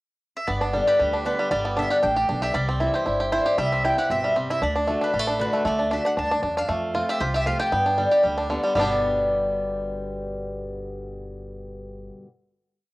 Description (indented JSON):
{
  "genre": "bluegrass",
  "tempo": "232 BPM",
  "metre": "4/4",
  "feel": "swing 54% on 8ths",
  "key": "G major",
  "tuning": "A4 = 440 Hz",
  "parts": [
    { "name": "mandolin", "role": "melody", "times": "0.4-8.5 s", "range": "B4 to A5", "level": "-26 LUFS", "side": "equal", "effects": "cassette tape" },
    { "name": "picked acoustic archtop guitar", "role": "accompaniment", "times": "0.5-12.3 s", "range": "F2 to G4", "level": "-26 LUFS", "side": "left 1 dB", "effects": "cassette tape" },
    { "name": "bluegrass banjo", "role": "arpeggios", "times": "0.5-12.1 s", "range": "D3 to G4", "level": "-25 LUFS", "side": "right 1 dB", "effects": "cassette tape" },
    { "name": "upright bass", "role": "bass", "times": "0.5-12.1 s", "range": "G1 to G2", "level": "-31 LUFS", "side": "equal", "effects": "none" }
  ],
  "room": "moderate spring reverb, RT60 1.4 s, small room ambience",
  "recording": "home recording on cassette",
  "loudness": "-21 LUFS",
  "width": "side -20 dB against mid",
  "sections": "0.0-0.5 pickup bar; 0.5-8.8 A section; 8.8-10.8 final chord",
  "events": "none",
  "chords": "0.5 G; 2.5 C; 4.6 D; 6.7 F; 7.7 G"
}